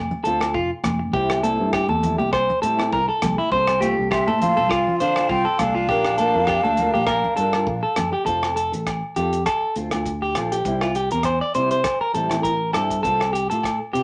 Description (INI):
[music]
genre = highlife guitar band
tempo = 101 BPM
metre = 4/4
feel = swing 54% on 16ths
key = F major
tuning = A4 = 439 Hz
[part]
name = fingered electric bass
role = bass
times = 0.0-14.0 s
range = F1 to D3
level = -30 LUFS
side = equal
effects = none
[part]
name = congas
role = percussion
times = 0.1-8.1 s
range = none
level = -30 LUFS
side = equal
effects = none
[part]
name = clean electric guitar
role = arpeggios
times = 0.2-14.0 s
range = E4 to D5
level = -24 LUFS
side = equal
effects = none
[part]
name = cloth-damped thuddy drum kit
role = drums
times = 0.2-14.0 s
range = hi-hat, kick drum, rim click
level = -32 LUFS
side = equal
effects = none
[part]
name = flamenco guitar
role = accompaniment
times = 0.3-14.0 s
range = G3 to Bb4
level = -31 LUFS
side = equal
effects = none
[part]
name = agogo bells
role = percussion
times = 0.4-13.8 s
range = none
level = -34 LUFS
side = equal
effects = none
[part]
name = mellow hollow jazz flute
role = melody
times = 3.8-8.0 s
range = C5 to G5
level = -25 LUFS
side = equal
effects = none
[part]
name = raspy tenor saxophone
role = second line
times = 3.8-8.0 s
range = A3 to D4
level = -32 LUFS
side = equal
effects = none
[sound]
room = moderate studio reverb, RT60 0.6 s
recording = none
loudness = -21 LUFS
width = mono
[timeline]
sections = 0.0-8.3 A section; 8.3-14.0 B section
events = none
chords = 0.0 F; 1.1 C; 3.5 F/C; 5.9 Bb; 8.3 F; 10.7 C; 13.0 F/C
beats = 0.55 | 1.14 1.74 2.33 2.93 | 3.52 4.11 4.71 5.30 | 5.89 6.49 7.08 7.68 | 8.27 8.87 9.46 10.06 | 10.65 11.25 11.85 12.44 | 13.04 13.64